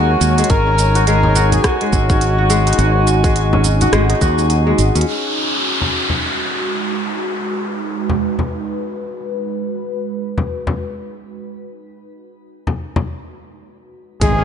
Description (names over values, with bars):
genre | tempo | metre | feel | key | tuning
organic downtempo | 105 BPM | 4/4 | swing 59% on 16ths | G# minor | A4 = 440 Hz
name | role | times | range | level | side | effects
trumpet with bucket mute | melody | 0.0-4.5, 14.2-14.4 s | F#4 to A#4 | -20 LUFS | equal | ping-pong delay, shimmer reverb
warm analog pad | sustained chords | 0.0-14.2 s | G#3 to E#5 | -23 LUFS | right 2 dB | chorus, sidechain pumping, shimmer reverb
kora | arpeggios | 0.0-6.7, 14.2-14.4 s | G#3 to F#4 | -20 LUFS | left 3 dB | vintage 12-bit sampler grit, digital delay, shimmer reverb
fretless electric bass | bass | 0.0-5.0, 14.2-14.4 s | G#1 to D#2 | -15 LUFS | equal | sidechain pumping
drifting glass-harmonics texture | texture | 0.0-5.1, 14.2-14.4 s | G#5 to A#5 | -29 LUFS | right 4 dB | chorus, built-in reverb, shimmer reverb
organic electronic drum kit | drums | 0.2-5.1, 14.2-14.4 s | hi-hat, rim click, shaker | -22 LUFS | right 2 dB | none
electronic kick drum | drums | 0.5-4.3, 14.2-14.3 s | none | -17 LUFS | equal | none
frame drum | percussion | 1.2-13.1 s | none | -21 LUFS | left 2 dB | none
downlifter and impact | sound effects | 5.1-9.6, 14.2-14.4 s | none | -22 LUFS | equal | none
room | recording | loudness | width
light reverb | nothing above 10.7 kHz | -14 LUFS | side -8 dB against mid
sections
0.0-5.1 A section; 5.1-14.2 B section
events
filter sweep on analog synth pad 5.1-14.2; impact 14.2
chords
0.0 F#maj7; 0.5 D#m7/G#; 5.1 G#m7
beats
| 0.50 1.07 1.64 2.21 | 2.79 3.36 3.93 4.50 | 5.07 5.64 6.21 6.79 | 7.36 7.93 8.50 9.07 | 9.64 10.21 10.79 11.36 | 11.93 12.50 13.07 13.64 | 14.21